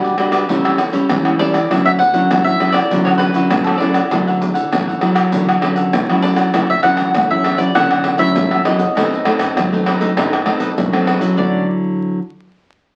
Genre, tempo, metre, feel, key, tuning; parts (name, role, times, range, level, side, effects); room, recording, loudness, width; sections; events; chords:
samba and choro; 99 BPM; 4/4; straight; D major; A4 = 440 Hz
mandolin; melody; 0.0-11.7 s; A4 to F#5; -20 LUFS; equal
cavaquinho; accompaniment; 0.0-11.6 s; D4 to F#5; -26 LUFS; equal
nylon-string guitar; accompaniment; 0.0-12.2 s; A2 to F#4; -19 LUFS; equal
rubbery square bass; bass; 0.0-11.7 s; A1 to F#2; -33 LUFS; equal
egg shaker, pandeiro, tamborim and surdo; percussion; 0.0-11.5 s; -21 LUFS; equal
wet studio reverb, RT60 0.6 s; very old 78 rpm record, vinyl crackle; -15 LUFS; mono
0.0-6.5 A section; 6.5-11.4 B section; 11.4-13.0 C section
0.5 A7; 1.7 Dmaj9; 9.0 B7b9; 11.4 Dmaj9